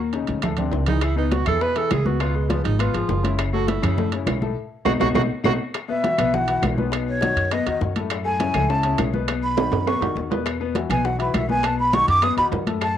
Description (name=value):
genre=Afro-Cuban jazz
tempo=204 BPM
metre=4/4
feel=straight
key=E major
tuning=A4 = 440 Hz
part: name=warm concert grand piano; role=accompaniment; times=0.0-12.9 s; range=A2 to B4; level=-26 LUFS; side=left 8 dB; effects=none
part: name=upright bass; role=bass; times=0.0-13.0 s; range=F#1 to F#2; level=-25 LUFS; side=equal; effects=none
part: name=bongos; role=percussion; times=0.1-13.0 s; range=none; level=-33 LUFS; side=left 10 dB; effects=none
part: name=timbales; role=percussion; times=0.1-13.0 s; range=none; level=-28 LUFS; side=right 11 dB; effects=none
part: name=congas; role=percussion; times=0.3-13.0 s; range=none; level=-27 LUFS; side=equal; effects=none
part: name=claves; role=percussion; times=0.4-13.0 s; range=none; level=-36 LUFS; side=left 12 dB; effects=none
part: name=breathy tenor saxophone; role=second line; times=0.9-5.5 s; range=G#3 to B4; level=-26 LUFS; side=right 8 dB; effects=none
part: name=breathy jazz flute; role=melody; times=5.9-13.0 s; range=B4 to D#6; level=-21 LUFS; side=right 1 dB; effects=cassette tape
room=moderate spring reverb, RT60 1.1 s, small room ambience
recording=home recording on cassette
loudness=-19 LUFS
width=side -10 dB against mid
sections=0.0-5.7 A section; 5.7-13.0 A section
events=drum fill 0.0-1.0, 4.9-5.7, 9.6-10.5; tenor saxophone solo 0.0-5.7; band accent 4.6-5.7; flute solo 5.7-13.0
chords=0.4 Dsus2; 1.0 C#m7; 2.2 C#7; 3.4 F#m7; 4.6 B7; 5.7 Esus2; 6.9 B7; 8.1 F#m7; 9.3 B; 10.5 Esus2; 11.6 B7